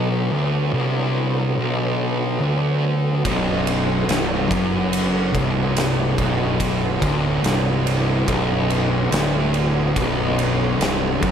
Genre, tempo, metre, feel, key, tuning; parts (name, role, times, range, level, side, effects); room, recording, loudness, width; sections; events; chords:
stoner and doom metal; 72 BPM; 4/4; straight; B minor; A4 = 437 Hz
tonewheel organ; sustained chords; 0.0-11.3 s; D3 to B3; -28 LUFS; right 2 dB; slow rotary speaker
thick fuzz guitar; riff; 0.0-11.3 s; B1 to F#2; -22 LUFS; left 4 dB; distortion
thick fuzz guitar; riff; 0.0-11.3 s; B1 to F#2; -24 LUFS; right 9 dB; distortion
oversized low-tuned drum kit; drums; 3.2-11.3 s; kick drum, ride cymbal, snare drum; -24 LUFS; equal
fuzz fingered electric bass; bass; 3.3-11.3 s; B0 to F#1; -27 LUFS; equal; overdrive
moderate studio reverb, RT60 0.6 s; -18 LUFS; side -8 dB against mid
0.0-11.3 A section
0.0 Bm